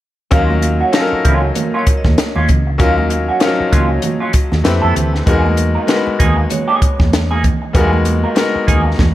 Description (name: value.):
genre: lush 1970s-style soul.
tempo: 97 BPM.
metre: 4/4.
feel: swing 58% on 16ths.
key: unclear.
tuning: A4 = 440 Hz.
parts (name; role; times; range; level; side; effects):
bright grand piano; accompaniment; 0.3-9.1 s; F3 to B4; -18 LUFS; left 3 dB; none.
electric guitar through a small old amp; riff; 0.3-9.0 s; Gb3 to A#4; -20 LUFS; right 2 dB; wah.
hollow-body short-scale fingered electric bass; bass; 0.3-9.1 s; Db2 to F2; -16 LUFS; equal; none.
compact cocktail drum kit; drums; 0.3-9.1 s; hi-hat, kick drum, snare drum; -16 LUFS; equal; none.
congas; percussion; 0.3-9.1 s; none; -23 LUFS; right 4 dB; none.
vibraphone with hard mallets; texture; 0.9-7.3 s; Bb4 to Eb5; -27 LUFS; right 2 dB; none.
room: light reverb, small room ambience.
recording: none.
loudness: -12 LUFS.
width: side -14 dB against mid.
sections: 0.3-9.1 A section.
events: drum fill 9.0.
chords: 0.3 Ebm9; 4.7 Fmaj9#11; 5.3 Emaj9#11.